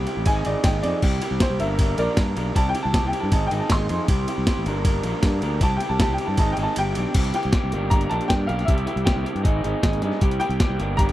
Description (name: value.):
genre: indie rock.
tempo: 157 BPM.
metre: 4/4.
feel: straight.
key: C mixolydian.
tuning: A4 = 440 Hz.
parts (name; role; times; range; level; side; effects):
electric guitar through a small old amp; riff; 0.0-11.1 s; E3 to Bb4; -27 LUFS; right 1 dB; none.
fuzz fingered electric bass; bass; 0.0-11.1 s; G1 to G2; -25 LUFS; equal; overdrive.
breakbeat sampler-style drum kit; drums; 0.1-11.1 s; crash cymbal, hi-hat, kick drum, ride cymbal, snare drum; -22 LUFS; equal; none.
clear upright piano; melody; 0.3-11.0 s; Bb4 to C6; -27 LUFS; equal; tape echo.
room: little or no reverb.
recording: dry, close 1970s-style studio recording.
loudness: -19 LUFS.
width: side -14 dB against mid.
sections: 0.0-7.1 A section; 7.1-11.1 B section.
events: upright piano solo 0.0-7.1; break 6.8-7.1.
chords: 0.3 Ab; 1.0 C; 1.6 Gm; 2.6 C; 3.3 Ab; 4.1 C; 4.7 Gm; 5.6 C; 6.4 Ab; 6.8 G; 7.1 C; 7.7 Gm; 8.7 C; 9.4 Ab; 10.2 C.